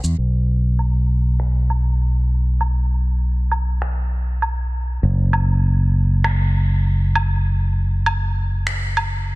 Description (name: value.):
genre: sunset chillout.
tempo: 99 BPM.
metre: 4/4.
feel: straight.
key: unclear.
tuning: A4 = 440 Hz.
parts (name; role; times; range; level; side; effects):
fingered electric bass; bass; 0.0-9.4 s; F#1 to E2; -17 LUFS; equal; none.
electronic shaker, woodblock and finger snaps; drums; 0.0-9.1 s; none; -25 LUFS; right 1 dB; small room reverb, soft clipping on snare.
room: digital ambience.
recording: dense, heavily limited modern master, low-pass filter.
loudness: -17 LUFS.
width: side -21 dB against mid.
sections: 0.2-9.4 A section.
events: filter sweep 0.2-9.4.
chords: none.